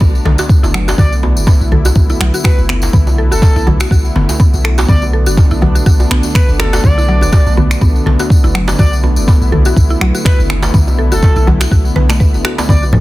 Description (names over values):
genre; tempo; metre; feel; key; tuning
afro house; 123 BPM; 4/4; swing 56% on 16ths; B minor; A4 = 442 Hz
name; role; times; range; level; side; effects
warm analog pad; sustained chords; 0.0-13.0 s; D3 to E4; -21 LUFS; equal; chorus, sidechain pumping
mallet-like synth pluck; arpeggios; 0.0-13.0 s; F#3 to B4; -21 LUFS; equal; chorus, sidechain pumping, dub echo
warm 808-style bass; bass; 0.0-13.0 s; F#1 to B1; -14 LUFS; equal; sidechain pumping
electronic kick drum; drums; 0.0-12.8 s; none; -10 LUFS; equal; none
djembe; percussion; 0.0-12.9 s; none; -20 LUFS; right 1 dB; none
tambourine; percussion; 0.0-12.9 s; none; -26 LUFS; left 3 dB; none
afro-pop drum kit; drums; 0.3-12.8 s; finger snaps, toms; -19 LUFS; left 2 dB; soft clipping on snare
expressive portamento lead; melody; 1.0-12.8 s; A4 to D5; -23 LUFS; equal; chorus, dub echo
congas; percussion; 12.9-13.0 s; none; -7 LUFS; equal; none
room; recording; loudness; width
little or no reverb; dense, heavily limited modern master; -9 LUFS; side -18 dB against mid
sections
0.0-13.0 A section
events
none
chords
0.0 Bm7